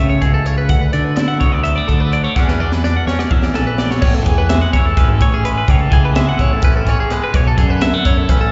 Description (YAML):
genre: math rock and midwest emo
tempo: 252 BPM (eighths)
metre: 7/8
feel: straight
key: unclear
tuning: A4 = 440 Hz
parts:
  - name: twangy electric guitar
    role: accompaniment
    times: 0.0-8.5 s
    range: D2 to E4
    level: -24 LUFS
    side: equal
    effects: slapback echo
  - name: twelve-string electric guitar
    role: arpeggios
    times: 0.0-8.5 s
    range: G#4 to F#5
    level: -24 LUFS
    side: equal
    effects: slapback echo
  - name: growling fingered electric bass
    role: bass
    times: 0.0-8.5 s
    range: G#1 to E3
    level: -19 LUFS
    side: equal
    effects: overdrive
  - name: crisp fusion drum kit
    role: drums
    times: 0.2-8.4 s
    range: crash cymbal, hi-hat, kick drum, snare drum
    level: -18 LUFS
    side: equal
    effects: none
room: small room reverb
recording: live gig heard through the venue's PA, recital hall reverb, nothing above 7.8 kHz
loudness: -15 LUFS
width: mono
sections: 0.0-4.0 A section; 4.0-8.5 B section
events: drum fill 2.4-4.0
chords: 0.0 Amaj7; 0.7 Bm7/D; 2.4 Esus2; 4.0 Amaj9; 7.3 Bm11